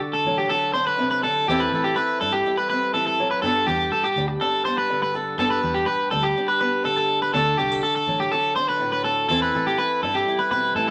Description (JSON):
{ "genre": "highlife guitar band", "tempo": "123 BPM", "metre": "4/4", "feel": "straight", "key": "G major", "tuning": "A4 = 439 Hz", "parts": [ { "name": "fingerpicked swing-style acoustic guitar", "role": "accompaniment", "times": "0.0-10.9 s", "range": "G2 to A4", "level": "-29 LUFS", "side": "equal", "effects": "none" }, { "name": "electric guitar at the edge of break-up", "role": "arpeggios", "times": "0.1-10.9 s", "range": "G4 to C5", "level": "-23 LUFS", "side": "equal", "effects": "none" }, { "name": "fingered electric bass", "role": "bass", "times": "0.2-10.9 s", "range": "A1 to B2", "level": "-33 LUFS", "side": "equal", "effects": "none" } ], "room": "wet studio reverb, RT60 0.8 s", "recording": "none", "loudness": "-22 LUFS", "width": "mono", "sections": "0.0-10.9 A section", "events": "none", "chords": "0.0 D; 1.5 C6; 3.4 Gadd9; 7.3 D; 9.3 C6" }